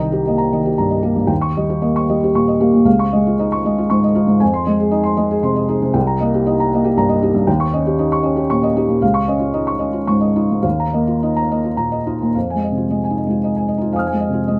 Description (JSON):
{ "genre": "neoclassical minimalist piano", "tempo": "103-121 BPM", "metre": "3/4", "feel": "rubato", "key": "F minor", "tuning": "A4 = 441 Hz", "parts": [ { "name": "felt-muted upright piano", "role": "solo", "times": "0.0-14.6 s", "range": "C2 to F6", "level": "-17 LUFS", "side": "equal", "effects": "none" } ], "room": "light reverb", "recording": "none", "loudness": "-17 LUFS", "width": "mono", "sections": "0.0-12.3 A section; 12.3-14.6 B section", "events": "none", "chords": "0.0 Cm7; 1.3 Eb7; 2.9 Dbadd9; 4.4 Fm7; 6.0 Cm7; 7.5 Eb7; 9.0 Dbadd9; 10.6 Ebsus2; 12.3 Fm7", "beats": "0.26 0.78 | 1.30 1.83 2.35 | 2.86 3.38 3.90 | 4.42 4.94 5.45 | 5.95 6.46 6.97 | 7.48 7.99 8.51 | 9.02 9.53 10.07 | 10.64 11.21 11.78 | 12.35 12.90 13.43 | 13.94 14.46" }